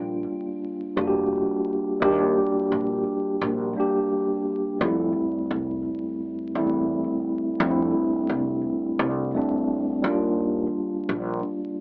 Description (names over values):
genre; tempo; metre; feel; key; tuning
lo-fi hip hop; 86 BPM; 4/4; swing 55% on 16ths; unclear; A4 = 439 Hz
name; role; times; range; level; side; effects
mellow tine electric piano; accompaniment; 0.0-11.8 s; F2 to G4; -23 LUFS; equal; medium stereo tremolo, cassette tape, low-pass filter
upright bass; bass; 0.0-11.4 s; F1 to F2; -27 LUFS; equal; none
room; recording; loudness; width
light reverb, small room ambience; worn, warbling old tape, cassette tape, vinyl crackle, warbly pitch drift, AM radio sound; -22 LUFS; side -29 dB against mid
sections
0.0-11.8 A section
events
none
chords
0.0 Ebmaj9 (rootless); 4.8 Fmaj9; 10.0 Ebmaj9